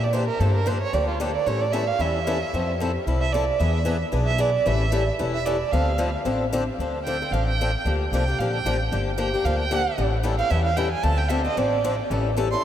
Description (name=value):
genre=acoustic string swing (jazz manouche)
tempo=226 BPM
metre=4/4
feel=swing 56% on 8ths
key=D minor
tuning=A4 = 438 Hz
part: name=warm violin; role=second line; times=0.0-12.6 s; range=F4 to C6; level=-25 LUFS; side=right 4 dB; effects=none
part: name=picked swing-style acoustic guitar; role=accompaniment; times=0.0-12.6 s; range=D3 to A4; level=-26 LUFS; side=left 3 dB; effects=none
part: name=upright bass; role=bass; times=0.0-12.5 s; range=E1 to Bb2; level=-25 LUFS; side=equal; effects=none
room=wet huge ambient reverb, RT60 7.6 s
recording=in a vast, echoing space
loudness=-21 LUFS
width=side -10 dB against mid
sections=0.0-6.8 A section; 6.8-12.6 A section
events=violin solo 0.0-12.6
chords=0.4 Gm7; 1.5 A7; 2.5 Fmaj7; 3.6 E7; 4.7 A7; 5.7 Dm7; 7.9 Bb6; 8.9 Gm7; 10.0 A7; 11.0 Dm7; 12.1 A7